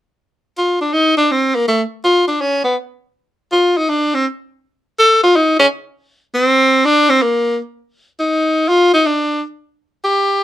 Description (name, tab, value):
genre	jazz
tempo	162 BPM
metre	4/4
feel	swing 65% on 8ths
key	unclear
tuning	A4 = 445 Hz
part	bright tenor saxophone	solo	0.6-10.4 s	A3 to A4	-12 LUFS	equal	none
room	moderate club reverb, RT60 0.6 s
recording	minimal, uncompressed stereo recording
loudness	-12 LUFS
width	side -13 dB against mid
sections	0.2-6.1 A section; 6.1-10.4 B section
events	none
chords	none